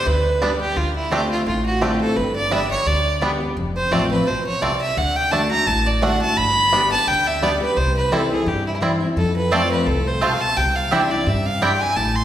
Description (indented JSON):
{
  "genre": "bluegrass",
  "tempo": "171 BPM",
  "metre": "4/4",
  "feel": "swing 55% on 8ths",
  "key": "C major",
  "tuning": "A4 = 439 Hz",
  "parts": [
    { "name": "clear fiddle", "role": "melody", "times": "0.0-12.2 s", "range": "E4 to C6", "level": "-20 LUFS", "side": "right 1 dB", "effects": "none" },
    { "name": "picked steel-string acoustic guitar", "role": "accompaniment", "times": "0.0-12.2 s", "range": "F2 to G4", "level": "-24 LUFS", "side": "left 1 dB", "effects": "none" },
    { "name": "upright bass", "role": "bass", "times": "0.1-12.2 s", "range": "F1 to G2", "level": "-25 LUFS", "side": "equal", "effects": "none" },
    { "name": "bluegrass banjo", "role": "arpeggios", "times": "0.4-11.7 s", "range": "G3 to F4", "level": "-26 LUFS", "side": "right 1 dB", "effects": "none" },
    { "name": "mandolin", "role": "stabs", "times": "9.5-11.7 s", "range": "C4 to A5", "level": "-24 LUFS", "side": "right 2 dB", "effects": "none" }
  ],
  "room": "wet recital hall reverb, RT60 1.6 s",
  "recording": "recorded in a church or concert hall",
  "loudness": "-17 LUFS",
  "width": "side -11 dB against mid",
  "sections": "0.0-12.2 A section",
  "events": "none",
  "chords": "0.0 G; 0.8 Dm7; 2.2 G; 3.6 F; 5.0 D; 6.4 G; 7.8 C; 9.2 F; 10.6 Cadd9"
}